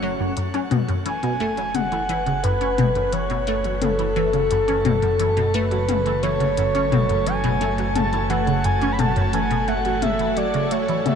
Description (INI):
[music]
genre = ambient, sequencer-driven space music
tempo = 87 BPM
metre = 4/4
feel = straight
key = F# minor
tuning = A4 = 441 Hz
[part]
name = breathy flute-like synth lead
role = melody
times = 0.0-11.2 s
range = A4 to B5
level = -23 LUFS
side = equal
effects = chorus, analog delay
[part]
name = string machine, full ensemble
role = sustained chords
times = 0.0-11.2 s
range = A3 to C#5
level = -29 LUFS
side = right 1 dB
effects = ensemble chorus
[part]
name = resonant blip pluck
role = riff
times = 0.0-11.2 s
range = F#2 to C#4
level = -23 LUFS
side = equal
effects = phaser, ensemble chorus, analog delay
[part]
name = analog drone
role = bass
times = 0.0-11.2 s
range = F#1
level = -28 LUFS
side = equal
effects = chorus
[part]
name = minimal click drum kit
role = percussion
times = 0.4-11.2 s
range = hi-hat, toms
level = -30 LUFS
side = left 8 dB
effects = analog delay
[sound]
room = wet shimmer reverb, RT60 7.8 s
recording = none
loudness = -19 LUFS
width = side -7 dB against mid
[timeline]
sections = 0.4-11.2 A section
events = fade-in on string machine 0.4-11.2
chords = 0.4 F#m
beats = | 0.37 1.06 1.75 2.44 | 3.13 3.82 4.51 5.20 | 5.89 6.58 7.27 7.96 | 8.65 9.34 10.03 10.71